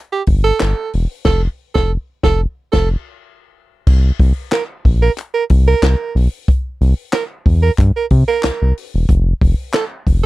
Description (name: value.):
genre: funk.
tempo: 92 BPM.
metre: 4/4.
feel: straight.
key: C mixolydian.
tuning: A4 = 441 Hz.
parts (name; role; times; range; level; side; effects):
breathy tenor saxophone; second line; 0.1-10.3 s; G4 to Bb4; -17 LUFS; right 6 dB; none.
round analog bass; bass; 0.3-10.3 s; E1 to C3; -13 LUFS; equal; none.
compact cocktail drum kit; drums; 0.3-10.2 s; crash cymbal, handclaps, hi-hat, kick drum, snare drum; -16 LUFS; equal; none.
group handclap; percussion; 0.6-9.9 s; none; -28 LUFS; left 4 dB; none.
room: little or no reverb.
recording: dry, close 1970s-style studio recording, tape saturation.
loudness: -13 LUFS.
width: side -18 dB against mid.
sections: 0.0-3.9 A section; 3.9-10.3 B section.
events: band accent 1.3-3.9.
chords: 0.0 Fadd9; 3.9 C7(no3); 9.1 N.C..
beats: 0.60 | 1.26 1.91 2.56 3.22 | 3.87 4.52 5.18 5.83 | 6.48 7.13 7.78 8.44 | 9.09 9.74.